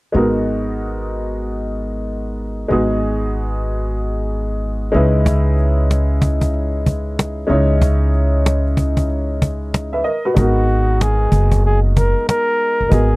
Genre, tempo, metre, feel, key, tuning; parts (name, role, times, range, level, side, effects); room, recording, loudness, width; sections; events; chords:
hip hop, jazz-hop; 94 BPM; 4/4; swing 66% on 16ths; G# minor; A4 = 442 Hz
clear upright piano; accompaniment; 0.1-13.2 s; G#3 to E5; -20 LUFS; equal
upright bass; bass; 0.1-13.2 s; F#1 to C#2; -17 LUFS; equal
cajon; drums; 5.3-13.1 s; -18 LUFS; equal
breathy flugelhorn; melody; 10.4-13.2 s; F#4 to A#4; -18 LUFS; equal
little or no reverb; dry, close 1970s-style studio recording; -15 LUFS; side -22 dB against mid
0.2-10.4 A section; 10.4-13.2 B section
0.2 G#m9; 4.9 C#m9; 10.4 G#m9